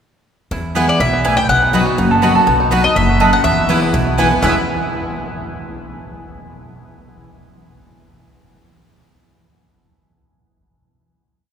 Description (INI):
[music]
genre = bluegrass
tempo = 246 BPM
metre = 4/4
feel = straight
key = E major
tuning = A4 = 441 Hz
[part]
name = picked steel-string acoustic guitar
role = accompaniment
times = 0.5-4.5 s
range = E2 to F#4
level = -19 LUFS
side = left 2 dB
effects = none
[part]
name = bluegrass banjo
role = arpeggios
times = 0.5-4.6 s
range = G#3 to A4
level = -19 LUFS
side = right 2 dB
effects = none
[part]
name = upright bass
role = bass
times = 0.5-4.5 s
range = F#1 to E2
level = -20 LUFS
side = equal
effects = none
[part]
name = mandolin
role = stabs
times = 0.7-4.5 s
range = B3 to B5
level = -21 LUFS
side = right 3 dB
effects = none
[part]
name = mandolin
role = melody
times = 0.9-4.5 s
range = D5 to G5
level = -19 LUFS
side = left 2 dB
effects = none
[sound]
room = wet cathedral reverb, RT60 5.0 s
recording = recorded in a church or concert hall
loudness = -12 LUFS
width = side -8 dB against mid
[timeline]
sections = 0.5-4.4 A section; 4.4-5.4 final chord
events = none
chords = 0.5 E; 1.5 B; 3.4 E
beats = | 0.52 0.76 1.01 1.25 | 1.50 1.74 1.99 2.23 | 2.47 2.72 2.96 3.21 | 3.45 3.69 3.94 4.18 | 4.42